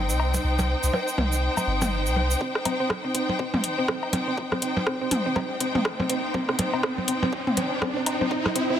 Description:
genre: minimal techno.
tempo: 122 BPM.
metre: 4/4.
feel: swing 59% on 16ths.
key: C minor.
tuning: A4 = 435 Hz.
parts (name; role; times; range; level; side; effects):
punchy sub bass; bass; 0.0-8.8 s; G1 to C2; -25 LUFS; equal; sidechain pumping, high-pass filter.
bubbling stepped-filter texture; texture; 0.0-8.8 s; C4 to C5; -36 LUFS; equal; chorus, built-in reverb, sidechain pumping.
warm studio string section; texture; 0.0-8.8 s; Eb4 to G5; -28 LUFS; left 1 dB; sidechain pumping.
booming analog drum machine; drums; 0.1-8.7 s; hi-hat, rim click, shaker; -27 LUFS; equal; high-pass filter on perc, high-pass filter on snare, high-pass filter on hats.
electronic cowbell, percussion blips and toms; percussion; 0.2-8.5 s; none; -29 LUFS; equal; dub echo.
mallet-like synth pluck; riff; 2.4-8.7 s; C4; -29 LUFS; equal; chorus, sidechain pumping, tape echo.
electronic kick drum; drums; 2.4-8.4 s; none; -35 LUFS; equal; high-pass filter on kick.
riser; sound effects; 4.4-8.8 s; none; -32 LUFS; equal; none.
room: moderate studio reverb, RT60 0.6 s.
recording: none.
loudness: -23 LUFS.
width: side -10 dB against mid.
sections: 0.0-2.4 A section; 2.4-8.8 B section.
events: build-up 2.4-8.8; riser 4.4-8.8.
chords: 0.0 Cm.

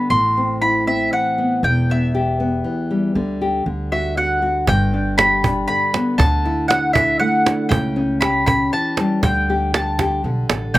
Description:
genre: acoustic folk duo or small band.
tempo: 118 BPM.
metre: 3/4.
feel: straight.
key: G major.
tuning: A4 = 440 Hz.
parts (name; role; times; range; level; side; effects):
mandolin; melody; 0.0-10.8 s; E5 to C6; -19 LUFS; equal; none.
nylon-string guitar; accompaniment; 0.0-10.8 s; E2 to A4; -20 LUFS; left 1 dB; slapback echo.
upright bass; bass; 0.1-10.8 s; E1 to D2; -23 LUFS; equal; none.
cajon; percussion; 4.7-10.8 s; none; -20 LUFS; right 3 dB; none.
room: little or no reverb.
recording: recorded outdoors, with no room sound.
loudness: -16 LUFS.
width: side -16 dB against mid.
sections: 0.0-4.7 A section; 4.7-10.8 A section.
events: none.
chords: 0.1 Amadd9; 1.6 Em; 3.1 Dsus4; 3.7 D; 4.7 G; 6.2 Dadd9; 7.7 A7/C#; 9.2 Dsus4; 10.2 D5.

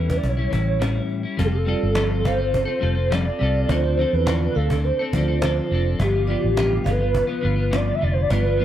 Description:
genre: indie pop, bedroom pop.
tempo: 104 BPM.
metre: 4/4.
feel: straight.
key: unclear.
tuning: A4 = 440 Hz.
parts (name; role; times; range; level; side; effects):
warbly nostalgic lead; melody; 0.0-8.6 s; G4 to E5; -24 LUFS; equal; ensemble chorus, slapback echo.
clean electric guitar; accompaniment; 0.0-8.6 s; G2 to A4; -26 LUFS; left 4 dB; lush chorus, vibrato effect.
vintage muted fingered electric bass; bass; 0.0-8.6 s; F1 to E2; -22 LUFS; equal; none.
cajon; drums; 0.1-8.6 s; none; -29 LUFS; equal; none.
vibraphone with medium hard mallets; second line; 1.7-8.6 s; E4 to F5; -28 LUFS; right 8 dB; ensemble chorus, slapback echo.
room: little or no reverb.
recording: none.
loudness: -19 LUFS.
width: side -11 dB against mid.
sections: 0.0-1.4 A section; 1.4-8.6 B section.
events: none.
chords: 0.0 A7; 1.4 Fadd9; 3.7 Dm7; 6.0 G7.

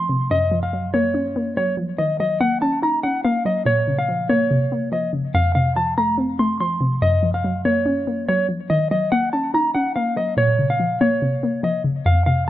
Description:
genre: hip hop.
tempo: 143 BPM.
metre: 4/4.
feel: half-time.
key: Bb harmonic minor.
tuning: A4 = 444 Hz.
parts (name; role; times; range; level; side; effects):
mellow electric guitar; melody; 0.0-12.4 s; Db5 to C6; -21 LUFS; equal; none.
warbly dusty pluck; accompaniment; 0.0-12.5 s; F2 to Eb4; -20 LUFS; left 1 dB; chorus.
room: light reverb.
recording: dark, warm production.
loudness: -18 LUFS.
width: side -13 dB against mid.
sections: 0.0-10.4 A section; 10.4-12.5 A section.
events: none.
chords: 0.3 Gbmaj7; 2.0 Ebm7; 3.7 Bbmadd9; 5.3 F; 7.0 Gbmaj7; 8.7 Ebm7; 10.4 Bbmadd9.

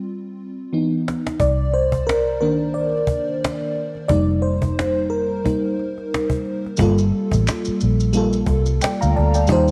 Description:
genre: R&B, neo-soul.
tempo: 89 BPM.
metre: 4/4.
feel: swing 55% on 16ths.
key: G minor.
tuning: A4 = 440 Hz.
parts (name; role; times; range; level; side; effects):
FM electric piano with soft pad layer; accompaniment; 0.0-9.7 s; Eb3 to Bb5; -22 LUFS; equal; chorus, tremolo.
cajon; drums; 1.1-9.7 s; none; -27 LUFS; equal; none.
vintage muted fingered electric bass; bass; 1.4-9.7 s; F1 to Eb2; -22 LUFS; equal; none.
maracas and finger snaps; percussion; 6.8-9.7 s; none; -36 LUFS; equal; none.
room: moderate echo chamber reverb, RT60 2.2 s.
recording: none.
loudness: -20 LUFS.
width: mono.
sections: 0.0-6.8 A section; 6.8-9.7 B section.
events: FM electric piano solo 0.0-6.8; drum fill 0.7-1.4.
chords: 0.0 G7sus4; 0.7 Badd11/E; 1.4 Cm9; 4.1 F9sus4; 6.8 Gm9.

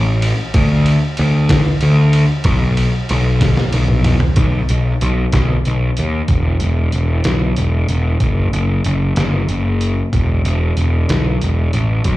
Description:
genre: quiet-loud alternative rock.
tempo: 62 BPM (dotted quarters).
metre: 6/8.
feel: straight.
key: unclear.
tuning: A4 = 440 Hz.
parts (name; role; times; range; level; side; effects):
fuzz picked electric bass; bass; 0.0-12.2 s; E1 to D#2; -14 LUFS; equal; overdrive.
trip hop sampler-style drum kit; drums; 0.2-12.2 s; hi-hat, kick drum, ride cymbal, snare drum, toms; -18 LUFS; equal; none.
room: little or no reverb.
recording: live gig heard through the venue's PA, club reverb.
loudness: -13 LUFS.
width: side -17 dB against mid.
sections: 0.0-4.4 A section; 4.4-6.3 B section; 6.3-12.2 C section.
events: drum fill 3.4-4.4.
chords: none.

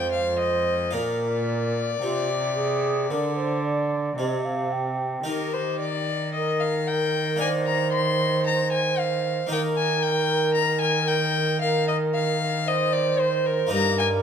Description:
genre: classical, baroque-style sonata movement with continuo.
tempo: 57 BPM.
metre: 4/4.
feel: rubato.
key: Eb major.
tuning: A4 = 439 Hz.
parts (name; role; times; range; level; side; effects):
warm violin; melody; 0.0-14.1 s; Bb4 to C6; -26 LUFS; left 6 dB; none.
mellow baroque flute; second line; 0.0-14.2 s; F4 to G5; -26 LUFS; right 3 dB; none.
harpsichord; accompaniment; 0.0-14.2 s; F2 to C5; -32 LUFS; left 2 dB; none.
warm cello; bass; 0.0-14.2 s; F2 to Eb3; -28 LUFS; right 2 dB; none.
room: moderate recital hall reverb, RT60 1.5 s.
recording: minimal, uncompressed stereo recording.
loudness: -22 LUFS.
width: side -8 dB against mid.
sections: 0.0-14.2 A section.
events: none.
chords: 0.0 Fm; 0.9 Bb; 5.3 Eb; 7.4 Bb/Eb; 9.5 Eb5; 13.7 Eb/G.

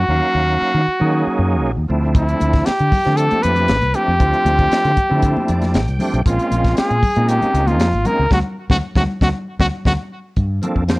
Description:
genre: electric jazz fusion.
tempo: 117 BPM.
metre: 4/4.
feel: straight.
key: unclear.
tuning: A4 = 439 Hz.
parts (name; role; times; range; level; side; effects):
clear trumpet; melody; 0.0-9.9 s; E4 to B4; -18 LUFS; equal; none.
bright tonewheel organ; accompaniment; 0.0-11.0 s; F3 to G5; -22 LUFS; right 1 dB; chorus vibrato.
fretless electric bass; bass; 0.0-11.0 s; Ab1 to Eb3; -18 LUFS; equal; none.
tight funk drum kit; drums; 2.1-11.0 s; hi-hat, kick drum, snare drum; -18 LUFS; equal; none.
congas; percussion; 2.4-11.0 s; none; -26 LUFS; left 2 dB; none.
room: light reverb.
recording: cassette tape.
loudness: -14 LUFS.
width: side -22 dB against mid.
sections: 0.0-10.4 A section.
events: tonewheel organ fill 5.2-6.3; band accent 8.3-10.4; drum fill 9.9-10.4.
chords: 0.0 Ebm9; 1.9 Dm9; 6.3 Bbm9; 8.3 D7(no3); 10.4 Gm11.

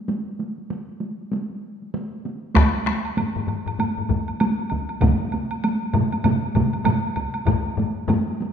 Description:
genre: japanese traditional, taiko drum ensemble.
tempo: 98 BPM.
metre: 4/4.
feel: swing 60% on 16ths.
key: none.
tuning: none.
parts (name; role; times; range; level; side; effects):
taiko ensemble; percussion; 0.1-8.5 s; none; -24 LUFS; right 2 dB; none.
taiko ensemble; percussion; 2.6-8.2 s; none; -25 LUFS; left 6 dB; none.
taiko ensemble; percussion; 2.6-7.6 s; none; -23 LUFS; equal; none.
woodblock; percussion; 2.6-8.3 s; none; -31 LUFS; right 2 dB; none.
solo taiko drums; percussion; 5.0-7.0 s; none; -27 LUFS; right 6 dB; none.
room: wet scoring stage reverb, RT60 2.0 s.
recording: minimal, uncompressed stereo recording.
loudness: -21 LUFS.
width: side -8 dB against mid.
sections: 0.0-7.5 A section; 7.5-8.5 B section.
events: none.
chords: none.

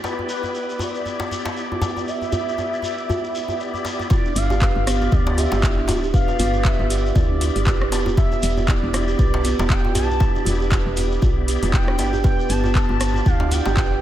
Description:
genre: afro house.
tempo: 118 BPM.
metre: 4/4.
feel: swing 57% on 16ths.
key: unclear.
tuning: A4 = 440 Hz.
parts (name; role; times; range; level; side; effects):
expressive synth lead; melody; 0.0-14.0 s; B4 to A5; -28 LUFS; equal; wide subtle chorus, tape echo.
bright tonewheel organ; stabs; 0.0-14.0 s; B3 to D5; -29 LUFS; left 1 dB; chorus vibrato, slow rotary speaker, sidechain pumping, tape echo.
djembe; percussion; 0.0-13.9 s; none; -28 LUFS; left 1 dB; none.
shekere; percussion; 0.0-13.9 s; none; -35 LUFS; left 2 dB; none.
kalimba; arpeggios; 4.1-13.9 s; B3 to B4; -25 LUFS; right 5 dB; sidechain pumping, tape echo.
electronic kick drum; drums; 4.1-13.9 s; none; -19 LUFS; equal; none.
woody FM bass; bass; 4.4-14.0 s; D1 to D2; -23 LUFS; equal; sidechain pumping.
afro-pop drum kit; drums; 4.4-13.9 s; handclaps, hi-hat, rim click; -28 LUFS; equal; none.
room: moderate lush hall reverb, RT60 1.6 s.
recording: dreamy mix soaked in reverb.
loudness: -18 LUFS.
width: side -12 dB against mid.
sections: 0.0-4.1 A section; 4.1-14.0 B section.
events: drop 4.1-14.0.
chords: 0.0 Em7; 4.1 G7; 8.2 Em7; 12.2 G7.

